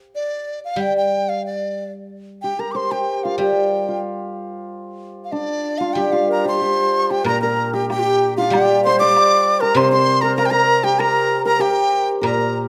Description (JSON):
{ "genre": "chinese traditional, Chinese chamber ensemble", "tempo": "94 BPM", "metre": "2/4", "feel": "rubato", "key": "G yu mode", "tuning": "A4 = 443 Hz", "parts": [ { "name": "large dizi", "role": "melody", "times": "0.2-12.6 s", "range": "D5 to D6", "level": "-22 LUFS", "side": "equal", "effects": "none" }, { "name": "guzheng", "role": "accompaniment", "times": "0.8-12.7 s", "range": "Bb2 to G3", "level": "-25 LUFS", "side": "equal", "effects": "none" }, { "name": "hammered dulcimer", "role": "second line", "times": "2.4-12.7 s", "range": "D4 to D5", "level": "-24 LUFS", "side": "equal", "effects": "none" }, { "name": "breathy bright low xiao", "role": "second line", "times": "6.3-12.7 s", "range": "D4 to D5", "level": "-24 LUFS", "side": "equal", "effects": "none" }, { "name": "woodblock", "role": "percussion", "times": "7.3-12.4 s", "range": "none", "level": "-32 LUFS", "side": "equal", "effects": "none" } ], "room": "moderate recital hall reverb, RT60 1.3 s", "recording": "close, detailed microphones", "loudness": "-18 LUFS", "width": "mono", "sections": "0.0-7.3 A section; 7.3-12.7 B section", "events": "none", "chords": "none", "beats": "0.15 | 0.80 1.45 | 2.11 2.76 | 3.40 4.04 | 4.67 5.32 | 5.97 6.62 | 7.26 7.89 | 8.53 9.15 | 9.76 10.38 | 10.99 11.61 | 12.23" }